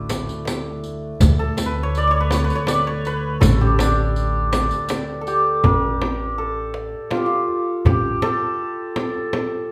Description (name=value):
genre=Persian modal ensemble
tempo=81 BPM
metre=3/4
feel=straight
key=D dastgah mahur, A dastgah shur from 5.6 s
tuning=A4 = 440 Hz
part: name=santur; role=melody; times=0.0-9.7 s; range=A3 to D5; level=-24 LUFS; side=equal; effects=none
part: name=upright bass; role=bass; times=0.0-8.2 s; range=A1 to D2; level=-24 LUFS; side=equal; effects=none
part: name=dark double bass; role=drone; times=0.0-5.7 s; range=D2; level=-32 LUFS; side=equal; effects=none
part: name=frame drum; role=percussion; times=0.1-9.5 s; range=none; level=-26 LUFS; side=equal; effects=none
part: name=riq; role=percussion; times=0.1-5.4 s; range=none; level=-30 LUFS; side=equal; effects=none
part: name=tombak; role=percussion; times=0.1-9.5 s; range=none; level=-25 LUFS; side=equal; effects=none
room=wet large studio reverb, RT60 0.9 s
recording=band playing live in one room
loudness=-20 LUFS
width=mono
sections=0.0-5.6 A section; 5.6-9.7 B section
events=none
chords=none